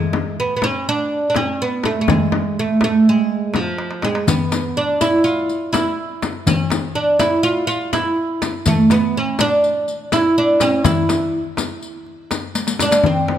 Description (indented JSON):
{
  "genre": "Turkish makam ensemble",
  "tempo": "246 BPM (eighths)",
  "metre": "9/8",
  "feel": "straight",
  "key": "E makam hicaz",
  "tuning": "A4 = 439 Hz",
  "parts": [
    { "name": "oud", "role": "melody", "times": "0.0-13.4 s", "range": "F3 to F4", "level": "-17 LUFS", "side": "right 2 dB", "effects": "none" },
    { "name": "darbuka", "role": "percussion", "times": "0.1-13.4 s", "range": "none", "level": "-24 LUFS", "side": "left 1 dB", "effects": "none" },
    { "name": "frame drum", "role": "percussion", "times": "0.1-13.4 s", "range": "none", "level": "-22 LUFS", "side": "left 6 dB", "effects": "none" },
    { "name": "riq", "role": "percussion", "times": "4.3-13.0 s", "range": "none", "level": "-25 LUFS", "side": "left 4 dB", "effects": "none" }
  ],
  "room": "light reverb",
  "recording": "close, detailed microphones",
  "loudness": "-15 LUFS",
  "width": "side -10 dB against mid",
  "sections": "0.0-13.0 A section",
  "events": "drum fill 3.8-4.3, 12.6-13.0",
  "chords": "none"
}